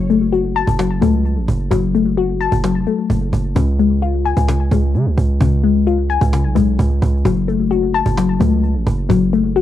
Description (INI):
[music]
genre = hip hop, trap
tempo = 130 BPM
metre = 4/4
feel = half-time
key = F# harmonic minor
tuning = A4 = 440 Hz
[part]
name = glassy wavetable pluck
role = arpeggios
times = 0.0-9.6 s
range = C#3 to A5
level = -17 LUFS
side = left 7 dB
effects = chorus, low-pass filter, cassette tape, tape echo
[part]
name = hard-hitting 808-style bass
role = bass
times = 0.0-9.6 s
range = E#1 to C#3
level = -17 LUFS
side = right 2 dB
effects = none
[part]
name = cajon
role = drums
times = 0.1-9.6 s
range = none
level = -23 LUFS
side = right 2 dB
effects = none
[sound]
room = studio ambience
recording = home recording on cassette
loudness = -14 LUFS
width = side -12 dB against mid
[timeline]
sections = 0.0-9.6 A section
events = none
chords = 0.0 F#m; 3.6 C#; 7.3 F#m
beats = 0.33 0.79 1.25 | 1.71 2.17 2.64 3.10 | 3.56 4.02 4.48 4.94 | 5.41 5.87 6.33 6.79 | 7.25 7.71 8.18 8.64 | 9.10 9.56